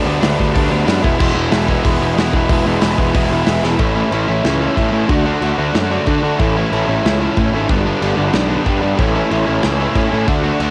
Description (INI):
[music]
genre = punk rock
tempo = 185 BPM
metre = 4/4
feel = straight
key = E mixolydian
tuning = A4 = 440 Hz
[part]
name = crunchy overdriven guitar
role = riff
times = 0.0-10.7 s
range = G2 to F#4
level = -19 LUFS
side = equal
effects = cassette tape
[part]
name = fuzz picked electric bass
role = bass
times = 0.0-10.7 s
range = E1 to D3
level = -21 LUFS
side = equal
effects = overdrive
[part]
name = loose indie drum kit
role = drums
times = 0.2-10.7 s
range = crash cymbal, hi-hat, kick drum, snare drum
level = -22 LUFS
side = equal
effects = none
[sound]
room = little or no reverb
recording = home recording on cassette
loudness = -16 LUFS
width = mono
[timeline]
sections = 0.0-3.8 A section; 3.8-10.7 B section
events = drum fill 3.6; half time 3.8-10.7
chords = 0.0 G/D; 1.0 E; 3.8 A; 5.1 D; 6.4 A; 7.7 G; 9.0 A